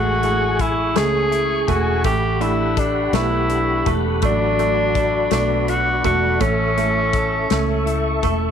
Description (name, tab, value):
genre	six-eight pop ballad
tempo	55 BPM (dotted quarters)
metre	6/8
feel	straight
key	A major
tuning	A4 = 440 Hz
part	warm tenor saxophone	melody	0.0-7.9 s	C#4 to G#4	-20 LUFS	left 1 dB	slapback echo
part	bright upright piano	accompaniment	0.0-8.5 s	A3	-24 LUFS	right 13 dB	none
part	tonewheel organ	sustained chords	0.0-8.5 s	F#4 to C#6	-26 LUFS	left 1 dB	overdrive, chorus vibrato, slow rotary speaker
part	direct-recorded clean electric guitar	arpeggios	0.0-8.5 s	F#3 to A4	-28 LUFS	left 14 dB	slapback echo
part	vintage muted fingered electric bass	bass	0.0-8.5 s	E1 to C#2	-23 LUFS	left 1 dB	none
part	modern studio drum kit	drums	0.2-8.4 s	hi-hat, kick drum, snare drum	-25 LUFS	left 4 dB	none
room	light reverb, studio reverb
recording	1960s-style stereo with parts hard left and right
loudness	-16 LUFS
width	side -8 dB against mid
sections	0.0-8.5 A section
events	none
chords	0.0 Amaj7; 2.1 Gmaj7/A; 4.2 D6/A; 6.4 A